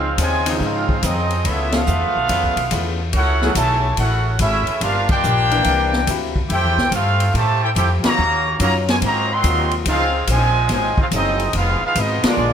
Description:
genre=jazz, big band swing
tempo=143 BPM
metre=4/4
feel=swing 66% on 8ths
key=unclear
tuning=A4 = 443 Hz
part: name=warm trumpet section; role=melody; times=0.0-12.5 s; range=Bb3 to C6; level=-20 LUFS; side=right 1 dB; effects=none
part: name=muted trombone section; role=second line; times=0.0-12.5 s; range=C3 to G4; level=-25 LUFS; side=right 4 dB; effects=none
part: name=picked swing-style acoustic guitar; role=accompaniment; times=0.0-12.5 s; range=G2 to A4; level=-29 LUFS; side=left 6 dB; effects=none
part: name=clear trombone section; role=sustained chords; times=0.0-12.5 s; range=C3 to Bb4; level=-26 LUFS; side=left 1 dB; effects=none
part: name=upright bass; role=bass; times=0.0-12.5 s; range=F1 to A2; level=-21 LUFS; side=equal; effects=none
part: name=swinging big-band drum kit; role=drums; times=0.2-12.3 s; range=crash cymbal, hi-hat, kick drum, ride cymbal, snare drum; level=-24 LUFS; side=left 1 dB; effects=none
room=light reverb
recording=none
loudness=-16 LUFS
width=side -8 dB against mid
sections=0.0-12.5 A section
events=band accent 1.7, 5.0, 8.0, 12.2; drum fill 12.4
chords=0.0 Dbmaj9; 1.4 Db7alt; 3.1 Gbm9; 4.8 Gm7; 5.7 C13; 6.5 Fmaj9; 8.2 Ebm9; 9.0 Ab13; 9.9 Dbmaj9; 11.5 Fm7b5

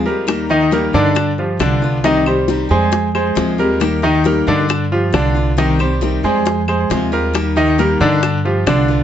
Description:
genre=latin, Cuban son and guajira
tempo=136 BPM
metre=4/4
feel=straight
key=C minor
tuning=A4 = 440 Hz
part: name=picked steel-string acoustic guitar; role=accompaniment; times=0.0-9.0 s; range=C3 to G4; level=-19 LUFS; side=left 3 dB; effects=none
part: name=upright bass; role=bass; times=0.0-9.0 s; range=C2 to G2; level=-20 LUFS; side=right 1 dB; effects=none
part: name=bright grand piano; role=arpeggios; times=0.1-9.0 s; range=D3 to Eb5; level=-16 LUFS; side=equal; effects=slapback echo
part: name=bongos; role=percussion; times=0.3-9.0 s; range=none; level=-22 LUFS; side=left 5 dB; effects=none
part: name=claves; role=percussion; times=0.3-8.9 s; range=none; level=-27 LUFS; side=left 5 dB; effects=none
room=moderate studio reverb, RT60 0.5 s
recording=nothing above 7.9 kHz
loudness=-13 LUFS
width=side -10 dB against mid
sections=0.0-9.0 A section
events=none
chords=0.3 Eb; 1.2 G7; 2.0 Cm; 2.9 Fm; 3.8 Eb; 4.7 G7; 5.6 Cm; 6.5 Fm; 7.3 Eb; 8.2 G7

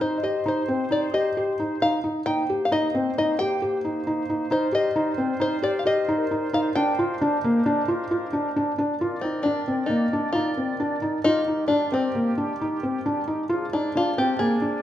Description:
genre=contemporary instrumental, chamber music in an uneven meter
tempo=134 BPM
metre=5/4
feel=straight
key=C minor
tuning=A4 = 440 Hz
part: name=open-back banjo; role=melody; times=0.0-14.8 s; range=C4 to G5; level=-25 LUFS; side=left 2 dB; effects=none
part: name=mellow woodwind section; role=sustained chords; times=0.0-14.8 s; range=C3 to D5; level=-34 LUFS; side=right 3 dB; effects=none
part: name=felt-muted upright piano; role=arpeggios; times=0.0-14.8 s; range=Bb3 to G4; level=-23 LUFS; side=equal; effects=none
part: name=celesta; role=texture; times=0.2-1.0, 6.2-6.9, 13.5-14.3 s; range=Ab4 to Eb5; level=-35 LUFS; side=left 5 dB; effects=none
room=moderate recital hall reverb, RT60 1.3 s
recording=minimal, uncompressed stereo recording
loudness=-22 LUFS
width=side -11 dB against mid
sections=0.0-9.0 A section; 9.0-14.8 B section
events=none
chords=0.0 Eb69; 2.3 Cm7; 4.5 Eb69; 6.8 Bb13; 9.0 Cm9; 11.2 Fm9; 13.5 Bb9

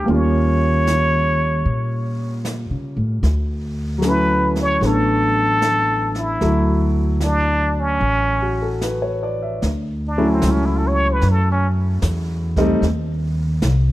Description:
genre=jazz ballad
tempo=75 BPM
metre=4/4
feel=swing 68% on 8ths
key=D major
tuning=A4 = 442 Hz
part: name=trumpet with plunger mute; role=melody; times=0.0-11.7 s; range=C4 to C#5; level=-20 LUFS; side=equal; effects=none
part: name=warm baby grand piano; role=accompaniment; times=0.0-12.8 s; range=F#3 to F#5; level=-22 LUFS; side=left 1 dB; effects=none
part: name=upright bass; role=bass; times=0.0-13.9 s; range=A1 to Db3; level=-20 LUFS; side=equal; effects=none
part: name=jazz brush drum kit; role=drums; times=0.1-13.9 s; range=brushed snare drum, hi-hat, kick drum, snare drum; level=-28 LUFS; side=right 2 dB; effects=none
room=light reverb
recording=dark, warm production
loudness=-16 LUFS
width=side -16 dB against mid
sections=0.0-9.6 A section; 9.6-13.9 B section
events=muted trumpet solo 9.6-13.9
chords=0.1 Eb9; 3.2 Dmaj9; 12.8 Cm

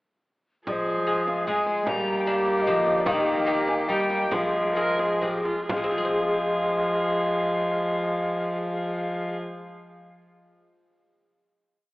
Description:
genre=classical, renaissance-style consort dance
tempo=123-151 BPM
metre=3/4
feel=straight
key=F minor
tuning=A4 = 440 Hz
part: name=alto recorder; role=melody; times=0.7-9.4 s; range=C5 to Bb5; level=-29 LUFS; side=left 1 dB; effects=none
part: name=rich viola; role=second line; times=0.7-9.4 s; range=F4 to Bb4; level=-29 LUFS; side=right 1 dB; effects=none
part: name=lute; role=accompaniment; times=0.7-10.2 s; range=D3 to C5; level=-30 LUFS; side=left 1 dB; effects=none
part: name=mellow bassoon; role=accompaniment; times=0.7-9.4 s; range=Ab3 to Bb3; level=-28 LUFS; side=equal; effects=none
part: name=rich cello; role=bass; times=0.7-9.4 s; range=Eb3 to Ab3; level=-31 LUFS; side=equal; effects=none
part: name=frame drum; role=percussion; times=0.7-5.9 s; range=none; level=-37 LUFS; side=right 1 dB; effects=none
room=wet church reverb, RT60 2.8 s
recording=AM radio sound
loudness=-22 LUFS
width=side -20 dB against mid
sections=0.7-5.7 A section; 5.7-8.6 final chord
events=slowing down 2.5-5.7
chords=0.7 Fm; 1.9 Gm; 3.1 Eb; 4.3 Fm

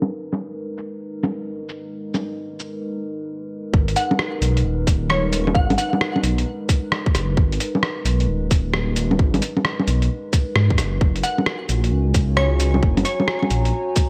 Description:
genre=future garage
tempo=132 BPM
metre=4/4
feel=swing 65% on 16ths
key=G# minor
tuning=A4 = 436 Hz
part: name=dark analog pad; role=sustained chords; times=0.0-14.1 s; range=G#3 to A#5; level=-31 LUFS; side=equal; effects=chorus, phaser, vintage 12-bit sampler grit, sidechain pumping
part: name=lo-fi sampler-style drum kit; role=drums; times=0.0-14.1 s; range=bongos, cabasa, hi-hat, rim click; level=-25 LUFS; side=equal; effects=studio ambience, gated reverb
part: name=swelling detuned saw bass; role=bass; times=3.7-13.7 s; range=D#1 to G#2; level=-22 LUFS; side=equal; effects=sidechain pumping
part: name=electronic kick drum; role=drums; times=3.7-14.1 s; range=none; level=-20 LUFS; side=equal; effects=studio ambience
part: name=glassy wavetable pluck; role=melody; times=4.0-6.2, 11.2-13.5 s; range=C#5 to F#5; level=-28 LUFS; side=equal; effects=chorus, digital delay
room=light reverb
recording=bright 1980s-style digital production, low-pass filter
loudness=-20 LUFS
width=mono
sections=0.0-3.7 A section; 3.7-14.1 B section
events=filter sweep 0.0-3.7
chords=0.0 G#madd9; 11.0 F#add9

